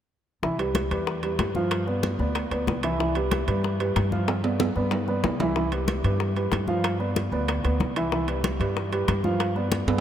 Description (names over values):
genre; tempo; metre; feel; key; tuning
Afro-Cuban jazz; 188 BPM; 4/4; straight; C major; A4 = 440 Hz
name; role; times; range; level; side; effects
warm grand piano; accompaniment; 0.4-10.0 s; E3 to F5; -27 LUFS; right 1 dB; none
upright bass; bass; 0.4-10.0 s; C2 to G2; -28 LUFS; equal; none
bongos; percussion; 0.4-10.0 s; none; -34 LUFS; left 8 dB; none
congas; percussion; 0.4-9.9 s; none; -33 LUFS; left 3 dB; none
timbales; percussion; 0.6-10.0 s; none; -32 LUFS; right 5 dB; none
room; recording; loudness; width
moderate cathedral reverb, RT60 6.7 s; in a vast, echoing space; -23 LUFS; side -10 dB against mid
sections
0.4-10.0 A section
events
drum fill 4.3-5.6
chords
0.4 Cmaj7; 1.7 G7; 3.0 Cmaj7; 4.3 G7; 5.6 Cmaj7; 6.8 G7; 8.1 Cmaj7; 9.4 G7